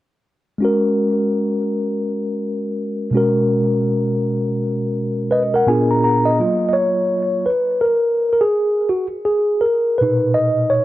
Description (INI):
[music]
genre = hip hop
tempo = 83 BPM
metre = 4/4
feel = swing 64% on 16ths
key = F# major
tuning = A4 = 440 Hz
[part]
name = mellow tine electric piano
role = solo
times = 0.6-10.8 s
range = A#2 to A#5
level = -16 LUFS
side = equal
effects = medium stereo tremolo, analog delay
[sound]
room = moderate studio reverb, RT60 0.5 s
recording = dark, warm production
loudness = -16 LUFS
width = side -15 dB against mid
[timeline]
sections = 0.6-6.4 A section; 6.4-10.8 B section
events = tine electric piano fill 5.0-6.4; tine electric piano solo 6.4-10.8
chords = 0.6 F#add9; 3.1 B5; 5.7 A#7b9; 6.4 F#maj7; 8.9 Bmaj7